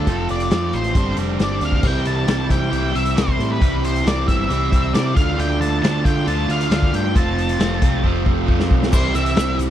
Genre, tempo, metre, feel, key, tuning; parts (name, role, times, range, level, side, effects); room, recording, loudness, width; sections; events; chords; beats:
indie rock; 135 BPM; 4/4; straight; C major; A4 = 439 Hz
octave-fuzz lead guitar; melody; 0.0-9.6 s; A4 to A5; -25 LUFS; left 1 dB; distortion, slapback echo
overdriven electric guitar; riff; 0.0-9.7 s; G2 to F4; -22 LUFS; right 2 dB
growling picked electric bass; bass; 0.0-9.7 s; F1 to D3; -22 LUFS; equal; overdrive
raw garage drum kit; drums; 0.1-9.7 s; crash cymbal, hi-hat, kick drum, snare drum; -20 LUFS; equal
tube shaker; percussion; 8.9-9.7 s; -38 LUFS; left 30 dB
little or no reverb; dry, close 1970s-style studio recording; -16 LUFS; side -11 dB against mid
0.0-1.8 A section; 1.8-8.9 B section
drum fill 8.1-8.9
0.1 F; 1.0 Gsus4; 1.8 C; 5.2 Dm; 7.2 F; 8.9 C
| 0.08 0.52 0.96 1.41 | 1.85 2.29 2.73 3.17 | 3.62 4.06 4.50 4.95 | 5.39 5.83 6.28 6.72 | 7.16 7.61 8.05 8.49 | 8.94 9.38